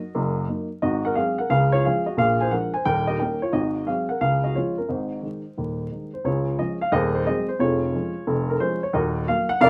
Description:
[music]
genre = jazz, stride piano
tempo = 177 BPM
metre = 4/4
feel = swing 66% on 8ths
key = Db major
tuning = A4 = 436 Hz
[part]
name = dark upright piano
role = solo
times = 0.0-9.7 s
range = Eb1 to Ab5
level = -23 LUFS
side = equal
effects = none
[sound]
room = moderate club reverb, RT60 0.5 s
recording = vinyl crackle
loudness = -24 LUFS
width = mono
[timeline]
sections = 0.0-6.2 A section; 6.2-9.7 A section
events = none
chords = 0.0 Ebm/Gb; 0.8 Ab7; 1.5 Db; 2.2 Bb7; 2.9 Eb7; 3.5 Ab7; 4.2 Db; 4.9 Ab; 6.2 Db; 6.9 Ab7/Eb; 7.6 Db/F; 8.9 Ebm

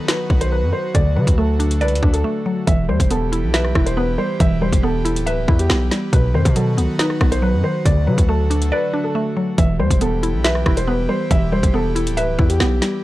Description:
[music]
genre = hip hop, drill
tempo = 139 BPM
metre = 4/4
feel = half-time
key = E minor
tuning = A4 = 439 Hz
[part]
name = warm upright piano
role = melody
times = 0.0-13.0 s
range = G4 to E5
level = -24 LUFS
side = equal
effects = none
[part]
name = airy breathy pad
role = sustained chords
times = 0.0-13.0 s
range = D3 to G4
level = -28 LUFS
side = equal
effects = chorus
[part]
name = drill drum kit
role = drums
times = 0.1-12.9 s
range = hi-hat, kick drum, rim click, snare drum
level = -18 LUFS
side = equal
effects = none
[part]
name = hard-hitting 808-style bass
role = bass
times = 0.3-12.8 s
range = D1 to D3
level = -20 LUFS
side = equal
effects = none
[part]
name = mallet-like synth pluck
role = accompaniment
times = 0.9-13.0 s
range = B2 to E5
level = -21 LUFS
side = right 1 dB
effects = chorus
[sound]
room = little or no reverb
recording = dry, gritty hardware recording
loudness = -15 LUFS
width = side -16 dB against mid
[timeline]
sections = 0.0-2.7 A section; 2.7-13.0 B section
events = break 0.0-0.9, 2.2-2.7, 8.7-9.6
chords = 0.0 B; 0.9 D; 2.7 Em; 6.1 B; 7.9 D; 9.6 Em

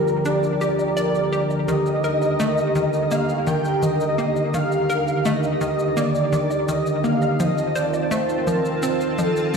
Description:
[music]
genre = ambient, sequencer-driven space music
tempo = 84 BPM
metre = 4/4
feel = straight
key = unclear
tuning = A4 = 440 Hz
[part]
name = breathy flute-like synth lead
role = melody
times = 0.0-9.6 s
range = A4 to G5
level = -24 LUFS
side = equal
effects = ensemble chorus, analog delay
[part]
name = sweeping resonant pad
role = sustained chords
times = 0.0-9.6 s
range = D3 to A5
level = -22 LUFS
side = right 1 dB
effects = chorus
[part]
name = hollow square pluck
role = riff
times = 0.0-9.6 s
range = Eb3 to D5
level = -26 LUFS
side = left 1 dB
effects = chorus, analog delay
[part]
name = shaker and woodblock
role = percussion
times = 0.1-9.6 s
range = none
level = -38 LUFS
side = left 1 dB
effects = analog delay
[sound]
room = wet concert hall reverb, RT60 2.2 s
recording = played on a big sound system in a bare room, cassette tape, stone room reverb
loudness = -19 LUFS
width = side -5 dB against mid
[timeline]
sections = 0.0-9.6 A section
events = fade-in on drum 0.0-9.6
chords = 0.0 Gm7; 1.7 Ebmaj7; 7.4 F7

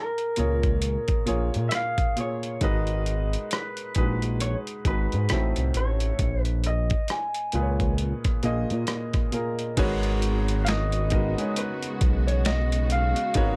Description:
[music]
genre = R&B, neo-soul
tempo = 67 BPM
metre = 4/4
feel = swing 59% on 16ths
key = G# dorian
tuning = A4 = 440 Hz
[part]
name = electric guitar through a small old amp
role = melody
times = 0.0-13.6 s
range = A#4 to G#5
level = -33 LUFS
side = equal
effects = none
[part]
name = boom bap sampler-style drum kit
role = drums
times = 0.2-13.6 s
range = crash cymbal, finger snaps, hi-hat, kick drum, rim click, snare drum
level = -30 LUFS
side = equal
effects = overdrive
[part]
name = warm grand piano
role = accompaniment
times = 0.4-13.6 s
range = A2 to D#5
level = -32 LUFS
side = equal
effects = none
[part]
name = smooth gliding synth bass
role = bass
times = 0.4-13.6 s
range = G#1 to A#2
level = -28 LUFS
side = equal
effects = none
[part]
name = muted studio string section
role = sustained chords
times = 9.8-13.6 s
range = C#3 to F#4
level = -37 LUFS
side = equal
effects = none
[sound]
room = light reverb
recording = none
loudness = -26 LUFS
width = mono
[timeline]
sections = 0.0-9.8 A section; 9.8-13.6 B section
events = none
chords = 0.0 A#m7; 2.6 G#m9; 5.3 Adim7; 6.2 A#m7; 9.8 G#m11

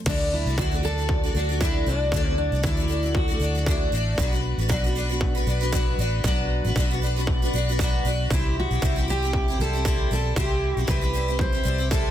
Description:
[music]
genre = acoustic pop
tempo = 116 BPM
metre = 4/4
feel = swing 55% on 16ths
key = unclear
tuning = A4 = 440 Hz
[part]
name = picked twelve-string acoustic guitar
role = accompaniment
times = 0.0-12.1 s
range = B2 to D5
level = -27 LUFS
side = equal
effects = double-tracked left and right
[part]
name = fingerpicked steel-string acoustic guitar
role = melody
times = 0.1-3.9, 8.3-12.1 s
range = D4 to C5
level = -28 LUFS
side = equal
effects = ping-pong delay
[part]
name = vintage muted fingered electric bass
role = bass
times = 0.1-12.1 s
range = A1 to D2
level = -25 LUFS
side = equal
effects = none
[part]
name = industrial drum kit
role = drums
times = 0.1-12.0 s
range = crash cymbal, kick drum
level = -26 LUFS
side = equal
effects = distortion
[sound]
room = light reverb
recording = dense, heavily limited modern master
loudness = -21 LUFS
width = side -11 dB against mid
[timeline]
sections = 0.1-12.1 A section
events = none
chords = 0.1 Dadd9; 4.2 Bm; 8.3 C

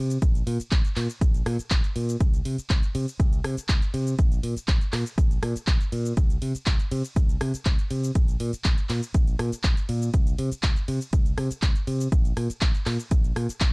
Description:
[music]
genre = filtered disco house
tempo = 121 BPM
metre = 4/4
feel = straight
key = unclear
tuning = A4 = 444 Hz
[part]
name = modern bright fingered electric bass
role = bass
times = 0.0-13.7 s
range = Bb1 to C3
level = -27 LUFS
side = equal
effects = sidechain pumping
[part]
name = house drum kit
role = drums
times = 0.1-13.7 s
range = handclaps, hi-hat, ride cymbal, rim click, shaker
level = -32 LUFS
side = equal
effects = sidechain pumping on hats, sidechain pumping on perc, sidechain pumping on cymbals
[part]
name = electronic kick drum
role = drums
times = 0.2-13.7 s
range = none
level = -22 LUFS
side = equal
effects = none
[sound]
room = little or no reverb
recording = dry, gritty hardware recording, cassette tape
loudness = -22 LUFS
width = side -32 dB against mid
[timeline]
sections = 0.0-13.7 A section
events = none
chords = none

